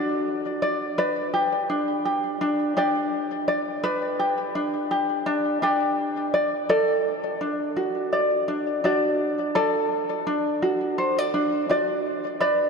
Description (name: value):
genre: folktronica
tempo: 84 BPM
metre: 4/4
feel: swing 56% on 16ths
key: unclear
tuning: A4 = 445 Hz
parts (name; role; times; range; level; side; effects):
- tenor ukulele; solo; 0.0-12.7 s; D4 to D5; -22 LUFS; equal; ping-pong delay
room: wet cathedral reverb, RT60 6.0 s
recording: dreamy mix soaked in reverb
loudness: -22 LUFS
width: side -5 dB against mid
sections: 0.0-6.7 A section; 6.7-12.7 B section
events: none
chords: 0.0 D; 1.0 G; 6.7 D